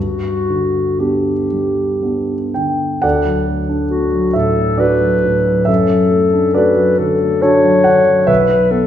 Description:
classical, romantic duo for clarinet and grand piano; 57-71 BPM; 3/4; rubato; G major, D major from 3.0 s; A4 = 440 Hz
dark clarinet; melody; 0.0-8.9 s; F#4 to C#5; -15 LUFS; left 2 dB
dark grand piano; accompaniment; 0.0-8.9 s; B1 to G5; -15 LUFS; equal
wet recital hall reverb, RT60 1.3 s; recorded in a church or concert hall; -12 LUFS; side -10 dB against mid
0.0-3.0 A section; 3.0-8.9 B section
0.0 G; 3.0 D; 5.7 D/F#; 8.3 B5

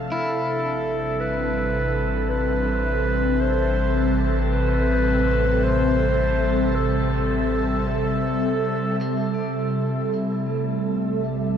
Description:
ambient; 54 BPM; 4/4; straight; A minor; A4 = 440 Hz
airy breathy pad; sustained chords; 0.0-11.6 s; C3 to E5; -23 LUFS; equal; chorus, phaser, shimmer reverb
deep rumbling drone; bass; 1.1-11.6 s; A1; -26 LUFS; equal; built-in reverb
mellow clarinet; melody; 0.1-11.6 s; E4 to C5; -26 LUFS; equal; shimmer reverb, ping-pong delay
clean electric guitar; arpeggios; 0.1-11.6 s; C4 to G4; -32 LUFS; left 1 dB; harmonic tremolo, shimmer reverb, ping-pong delay
wet cathedral reverb, RT60 7.2 s; -20 LUFS; side -8 dB against mid
0.0-9.0 A section; 9.0-11.6 B section
fade-in on analog synth pad 0.0-9.0; filter sweep on analog synth pad 9.0-11.6
0.1 Am7

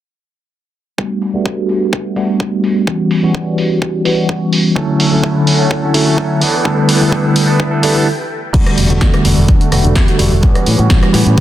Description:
filtered disco house; 127 BPM; 4/4; straight; E dorian; A4 = 442 Hz
tine electric piano; accompaniment; 1.0-11.4 s; D3 to F#4; -14 LUFS; equal; medium stereo tremolo, phaser, sidechain pumping, low-pass filter
electronic kick drum; drums; 1.0-11.4 s; -13 LUFS; equal; high-pass filter on kick, high-pass filter on room
punchy analog drum machine; drums; 1.2-11.4 s; crash cymbal, hi-hat, rim click, snare drum; -19 LUFS; equal; sidechain pumping on hats, low-pass filter on hats, sidechain pumping on cymbals, low-pass filter on cymbals, low-pass filter on snare
string machine, full ensemble; sustained chords; 4.8-11.4 s; D3 to G5; -21 LUFS; left 1 dB; phaser, ensemble chorus, vintage 12-bit sampler grit, sidechain pumping, low-pass filter
direct-recorded clean electric guitar; riff; 4.8-11.4 s; E3 to A4; -21 LUFS; right 4 dB; vintage 12-bit sampler grit, sidechain pumping, low-pass filter
tambourine; percussion; 4.8-11.4 s; barely audible
modern bright fingered electric bass; bass; 8.5-11.4 s; E1 to A2; -14 LUFS; equal; sidechain pumping, low-pass filter
light reverb, digital ambience; dense, heavily limited modern master; -11 LUFS; side -12 dB against mid
1.0-8.5 A section; 8.5-11.4 B section
filter sweep on drum 1.0-8.5; filter sweep 1.0-8.5; stop 8.1-8.5
1.0 Gmaj9; 2.9 Em69; 4.8 Dmaj7; 6.4 G69; 8.5 Em11; 10.4 A13

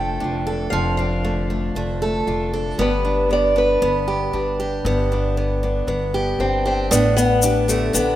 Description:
acoustic folk duo or small band; 116 BPM; 4/4; straight; A4 = 439 Hz
picked acoustic archtop guitar; melody; 0.0-8.2 s; A3 to G5; -21 LUFS; equal; slapback echo
nylon-string guitar; accompaniment; 0.0-8.2 s; F2 to G4; -28 LUFS; left 3 dB
picked steel-string acoustic guitar; arpeggios; 0.0-8.2 s; F3 to A4; -23 LUFS; right 2 dB
upright bass; bass; 0.0-8.2 s; F1 to A1; -24 LUFS; left 1 dB
tube shaker; percussion; 6.9-8.1 s; -24 LUFS; left 5 dB
light reverb, studio reverb; rough home demo mix; -18 LUFS; side -13 dB against mid
0.0-6.9 A section; 6.9-8.2 B section
0.0 Dm/F; 2.8 G; 6.9 G/A

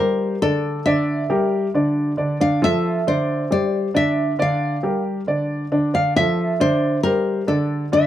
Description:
latin; 136 BPM; 4/4; straight; A4 = 440 Hz
nylon-string guitar; melody; 0.0-8.1 s; A4 to F5; -21 LUFS; left 1 dB
dark grand piano; arpeggios; 0.0-8.1 s; D3 to D5; -19 LUFS; equal
little or no reverb; dry, close 1970s-style studio recording; -18 LUFS; side -12 dB against mid
0.0-8.1 A section
0.0 Csus2; 0.6 Gm; 2.4 Dmadd9; 3.3 Csus2; 4.2 Gm; 5.9 Dmadd9; 6.8 Csus2

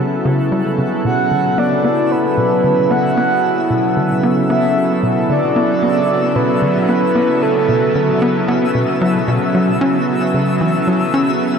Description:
ambient, sequencer-driven space music; 113 BPM; 4/4; straight; B minor; A4 = 440 Hz
lush unison pad; sustained chords; 0.0-11.6 s; C#3 to A4; -16 LUFS; equal; chorus
tight sequencer bass; riff; 0.0-11.3 s; B2 to C#4; -20 LUFS; equal; tape echo
twinkling granular texture; texture; 0.0-11.6 s; E5 to F#5; -27 LUFS; left 3 dB; built-in reverb
breathy flute-like synth lead; melody; 1.1-8.2 s; A4 to F#5; -18 LUFS; right 1 dB; wide subtle chorus, tape echo
wet huge ambient reverb, RT60 8.1 s; -13 LUFS; side -6 dB against mid
0.0-11.6 A section
fade-in on synth texture 0.0-11.6
0.0 C#m7b5; 1.1 Bm7; 9.5 C#m7

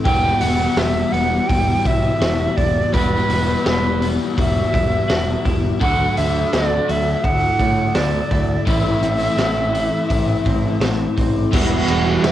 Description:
rock, shoegaze and dream pop; 84 BPM; 4/4; straight; E minor; A4 = 442 Hz
silver concert flute; melody; 0.0-12.3 s; B4 to G5; -21 LUFS; right 2 dB; cassette tape, analog delay
twelve-string electric guitar; arpeggios; 0.0-12.3 s; E3 to F#4; -26 LUFS; right 3 dB; lush chorus, cassette tape, analog delay
clean electric guitar; riff; 0.0-12.3 s; A2 to F#4; -28 LUFS; right 9 dB; reverse reverb, cassette tape
overdriven electric guitar; riff; 0.0-12.3 s; E2 to F#4; -23 LUFS; left 7 dB; lush chorus, cassette tape
growling picked electric bass; bass; 0.1-12.3 s; E1 to A2; -23 LUFS; equal; overdrive
raw garage drum kit; drums; 0.1-12.3 s; crash cymbal, hi-hat, kick drum, ride cymbal, snare drum; -21 LUFS; equal; cassette tape
overdriven semi-hollow guitar; riff; 11.5-12.3 s; E3 to E4; -26 LUFS; equal
light reverb; home recording on cassette; -16 LUFS; side -12 dB against mid
0.0-11.5 A section
0.1 Emadd9; 5.8 Dadd9; 8.7 Am; 11.5 Emadd9

